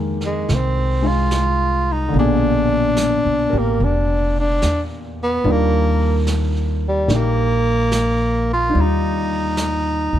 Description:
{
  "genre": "jazz ballad",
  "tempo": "72 BPM",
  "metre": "4/4",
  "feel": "swing 66% on 8ths",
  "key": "Eb major",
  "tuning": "A4 = 437 Hz",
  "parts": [
    { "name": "clear baby grand piano", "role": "accompaniment", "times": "0.0-10.2 s", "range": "Bb2 to D5", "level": "-23 LUFS", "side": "left 2 dB", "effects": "none" },
    { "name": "upright bass", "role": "bass", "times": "0.0-10.2 s", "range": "F1 to F2", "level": "-20 LUFS", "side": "equal", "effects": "none" },
    { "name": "vintage brush drum kit", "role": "drums", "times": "0.2-10.2 s", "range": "brushed snare drum, hi-hat, snare drum", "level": "-30 LUFS", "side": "right 3 dB", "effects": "none" },
    { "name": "growling tenor saxophone", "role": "melody", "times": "0.3-10.2 s", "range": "G3 to F4", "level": "-20 LUFS", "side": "right 1 dB", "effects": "plate reverb" }
  ],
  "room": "light reverb",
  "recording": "dark, warm production",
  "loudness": "-16 LUFS",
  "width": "side -11 dB against mid",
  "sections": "0.0-10.2 A section",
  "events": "none",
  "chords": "0.0 Fm11; 2.1 Bb7b9; 5.4 Ebmaj9"
}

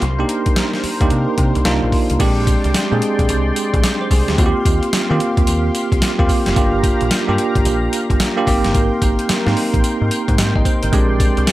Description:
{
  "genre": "R&B, new jack swing",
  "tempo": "110 BPM",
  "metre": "4/4",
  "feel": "swing 63% on 16ths",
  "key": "unclear",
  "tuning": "A4 = 440 Hz",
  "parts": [
    { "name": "bell-like tine electric piano", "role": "accompaniment", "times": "0.0-11.5 s", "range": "Ab3 to Eb5", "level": "-18 LUFS", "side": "right 2 dB", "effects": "medium stereo tremolo" },
    { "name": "warm analog pad", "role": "sustained chords", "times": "0.0-11.5 s", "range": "Ab3 to C6", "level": "-25 LUFS", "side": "left 2 dB", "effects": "chorus" },
    { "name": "deep dub picked electric bass", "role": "bass", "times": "0.0-11.5 s", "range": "F1 to Eb3", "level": "-20 LUFS", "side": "equal", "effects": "none" },
    { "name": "boom bap sampler-style drum kit", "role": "drums", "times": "0.0-11.5 s", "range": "crash cymbal, hi-hat, kick drum, snare drum, tambourine", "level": "-18 LUFS", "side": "equal", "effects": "none" }
  ],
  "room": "little or no reverb",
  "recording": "none",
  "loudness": "-14 LUFS",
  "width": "side -16 dB against mid",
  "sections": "0.0-2.2 A section; 2.2-11.5 B section",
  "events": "none",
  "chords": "0.0 Cm7; 2.2 Bb13; 4.4 Eb69; 6.6 Gm7; 8.5 Abmaj9; 10.9 Bb13"
}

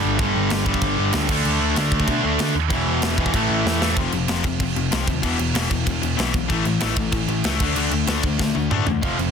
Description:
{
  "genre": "punk rock",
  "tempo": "190 BPM",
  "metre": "4/4",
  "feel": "straight",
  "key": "unclear",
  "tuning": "A4 = 440 Hz",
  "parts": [
    { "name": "distorted electric guitar", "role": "riff", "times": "0.0-9.3 s", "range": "E2 to D4", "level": "-24 LUFS", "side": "left 13 dB", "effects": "overdrive" },
    { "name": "fuzz guitar", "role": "riff", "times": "0.0-9.3 s", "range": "E2 to D4", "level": "-27 LUFS", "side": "right 1 dB", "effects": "distortion" },
    { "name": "tight distorted guitar", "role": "riff", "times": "0.0-4.0, 9.0-9.3 s", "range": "E2 to D4", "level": "-24 LUFS", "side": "right 18 dB", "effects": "distortion" },
    { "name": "overdriven picked electric bass", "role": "bass", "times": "0.0-9.3 s", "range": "E1 to D3", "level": "-25 LUFS", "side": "equal", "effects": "none" },
    { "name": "tight metal drum kit", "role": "drums", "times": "0.2-9.3 s", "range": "crash cymbal, kick drum, snare drum, toms", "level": "-24 LUFS", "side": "right 1 dB", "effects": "none" }
  ],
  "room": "little or no reverb",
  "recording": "dense, heavily limited modern master",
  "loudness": "-18 LUFS",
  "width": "side -6 dB against mid",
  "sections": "0.0-4.0 A section; 4.0-9.3 B section",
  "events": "drum fill 3.7-4.0, 8.4-9.0",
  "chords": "0.0 G5; 1.3 D5; 2.7 E5; 3.3 A5; 4.0 F5; 5.2 E5; 6.5 A; 7.6 D5"
}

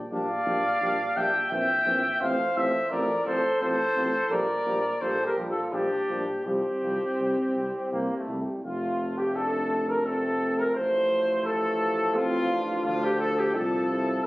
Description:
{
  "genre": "classical, brass quintet",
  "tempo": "86 BPM",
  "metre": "3/4",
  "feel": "straight",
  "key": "F major",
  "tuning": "A4 = 440 Hz",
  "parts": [
    { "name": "mellow trumpet", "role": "melody", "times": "0.1-14.3 s", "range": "F4 to G5", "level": "-27 LUFS", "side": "left 1 dB", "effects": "none" },
    { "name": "warm flugelhorn", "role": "second line", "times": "0.1-14.3 s", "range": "C4 to E5", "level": "-30 LUFS", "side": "right 1 dB", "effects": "none" },
    { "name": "brilliant trombone", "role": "accompaniment", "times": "0.1-14.2 s", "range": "E3 to C4", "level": "-35 LUFS", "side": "equal", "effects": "none" },
    { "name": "warm French horn", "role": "accompaniment", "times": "0.1-14.2 s", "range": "G3 to F4", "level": "-34 LUFS", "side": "left 1 dB", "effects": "none" },
    { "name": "warm tuba", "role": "bass", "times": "0.1-14.3 s", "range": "F1 to D2", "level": "-33 LUFS", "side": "equal", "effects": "none" }
  ],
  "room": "moderate large studio reverb, RT60 1.4 s",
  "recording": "recorded on a phone in the room, studio reverb",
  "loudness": "-24 LUFS",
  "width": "side -18 dB against mid",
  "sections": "0.0-8.6 A section; 8.6-14.3 B section",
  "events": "none",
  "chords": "0.0 Gm/Bb; 1.5 C7/Bb; 2.2 F/A; 4.3 Gm7/Bb; 6.5 Csus4; 7.9 C5; 8.6 F; 10.8 F/A; 12.8 Dm"
}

